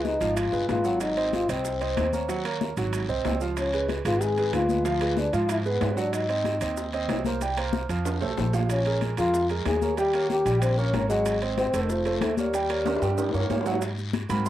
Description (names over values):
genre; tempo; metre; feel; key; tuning
Afro-Cuban jazz; 187 BPM; 4/4; straight; Ab major; A4 = 439 Hz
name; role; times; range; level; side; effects
trombone with cup mute; melody; 0.0-13.5 s; Eb3 to Ab4; -26 LUFS; left 2 dB; cassette tape
warm baby grand piano; accompaniment; 0.0-14.5 s; F3 to C6; -30 LUFS; right 6 dB; none
upright bass; bass; 0.0-14.5 s; F1 to Ab2; -29 LUFS; equal; none
congas; percussion; 0.0-14.5 s; none; -33 LUFS; left 7 dB; none
guiro; percussion; 0.0-14.5 s; none; -41 LUFS; left 8 dB; none
maracas; percussion; 0.0-14.5 s; none; -44 LUFS; right 8 dB; none
bongos; percussion; 0.1-14.5 s; none; -37 LUFS; left 9 dB; none
timbales; percussion; 0.2-14.5 s; none; -36 LUFS; right 8 dB; none
room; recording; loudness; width
moderate small room reverb, RT60 0.5 s; home recording on cassette; -23 LUFS; side -13 dB against mid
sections
0.0-13.8 A section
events
drum fill 8.1-8.7, 12.9-13.8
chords
0.0 Db7; 1.0 Ab7; 2.3 Ebm7; 2.9 Ab7; 3.6 Db7; 4.8 Ddim7; 6.1 Ab7; 7.4 C5; 8.1 F; 8.7 Bbm7; 10.0 Eb7; 11.3 Ab7; 11.9 F7; 12.5 Eb7; 13.8 Ab7